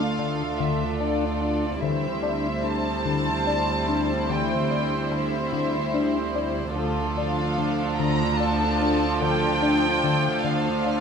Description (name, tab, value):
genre	cinematic, suspense film score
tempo	73 BPM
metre	3/4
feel	straight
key	D minor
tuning	A4 = 444 Hz
part	rich studio violin section	melody	0.0-11.0 s	D5 to Bb5	-29 LUFS	equal	none
part	warm symphonic violin section	second line	0.0-11.0 s	E4 to C5	-29 LUFS	equal	none
part	rich studio viola section	accompaniment	0.0-11.0 s	F3 to D4	-30 LUFS	right 3 dB	none
part	rich symphonic cello section	bass	0.0-11.0 s	D2	-30 LUFS	right 2 dB	none
part	warm symphonic double bass section	bass	0.0-11.0 s	D2	-32 LUFS	right 4 dB	none
part	large celesta	texture	0.0-11.0 s	A4 to E6	-40 LUFS	left 4 dB	none
part	chorused synth bass	riff	0.2-11.0 s	D3 to D4	-27 LUFS	left 4 dB	none
part	warm French horn section	sustained chords	1.8-9.5 s	E3 to C5	-35 LUFS	right 1 dB	none
room	moderate scoring stage reverb, RT60 1.6 s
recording	none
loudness	-22 LUFS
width	side -6 dB against mid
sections	0.0-11.0 A section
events	none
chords	0.0 Dm; 1.8 C/D; 6.8 Dm